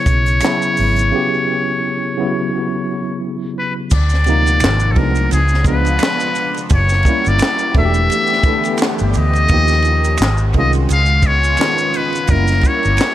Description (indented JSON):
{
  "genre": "R&B, neo-soul",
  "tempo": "86 BPM",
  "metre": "4/4",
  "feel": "swing 57% on 16ths",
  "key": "unclear",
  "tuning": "A4 = 441 Hz",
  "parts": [
    { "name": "trumpet with metal mute", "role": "melody", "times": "0.0-13.1 s", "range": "G#4 to E#5", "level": "-18 LUFS", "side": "left 2 dB", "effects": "tape echo" },
    { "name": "tine electric piano", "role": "accompaniment", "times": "0.0-13.1 s", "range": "C3 to A4", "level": "-20 LUFS", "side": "right 1 dB", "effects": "overdrive, fast stereo tremolo, tape echo" },
    { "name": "vintage muted fingered electric bass", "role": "bass", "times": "0.1-13.0 s", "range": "E1 to Eb2", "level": "-15 LUFS", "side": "equal", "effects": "none" },
    { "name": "compact cocktail drum kit", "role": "drums", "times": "0.1-13.1 s", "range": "crash cymbal, handclaps, hi-hat, kick drum, ride cymbal, snare drum", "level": "-19 LUFS", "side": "equal", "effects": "none" },
    { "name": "maracas and finger snaps", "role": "percussion", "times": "0.1-13.1 s", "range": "none", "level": "-29 LUFS", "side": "right 4 dB", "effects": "tape echo" },
    { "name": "lush unison pad", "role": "sustained chords", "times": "4.2-13.1 s", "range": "B#2 to F#5", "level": "-26 LUFS", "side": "equal", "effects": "chorus, phaser" }
  ],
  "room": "small room ambience",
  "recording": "echo-heavy mix",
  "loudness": "-13 LUFS",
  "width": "side -13 dB against mid",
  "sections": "0.0-3.9 A section; 3.9-13.1 B section",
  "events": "break 1.1-3.9",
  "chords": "0.0 A13 (rootless); 3.9 D; 4.6 G#13; 5.3 C#7b9; 6.7 F#7b9; 7.8 Em7; 9.5 Eb7; 10.2 G#6; 10.9 C#7; 12.3 F#7b9"
}